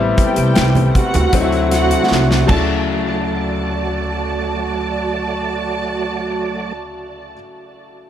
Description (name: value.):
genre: lush 1970s-style soul.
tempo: 78 BPM.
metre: 4/4.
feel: straight.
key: D major.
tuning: A4 = 440 Hz.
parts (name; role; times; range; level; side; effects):
clear grand piano; accompaniment; 0.0-8.1 s; C#3 to E4; -21 LUFS; left 5 dB; none.
overdriven tonewheel organ; sustained chords; 0.0-6.7 s; C3 to D5; -25 LUFS; right 4 dB; chorus vibrato, fast rotary speaker.
upright bass; bass; 0.0-7.3 s; A1 to D2; -20 LUFS; equal; none.
dark studio string section; second line; 0.2-6.7 s; F#4 to A5; -22 LUFS; right 4 dB; tape echo.
modern studio drum kit; drums; 0.2-2.7 s; crash cymbal, hi-hat, kick drum, snare drum; -18 LUFS; equal; none.
congas; percussion; 0.2-3.2 s; none; -25 LUFS; right 4 dB; none.
room: light reverb, studio reverb.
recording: none.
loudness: -15 LUFS.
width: side -10 dB against mid.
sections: 0.0-2.9 A section; 2.9-6.0 B section.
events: drum fill 2.1-2.9.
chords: 0.0 Am7; 1.3 D7; 2.5 Dmaj7.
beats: 0.57 1.34 2.11 | 2.88 3.65 4.42 5.19.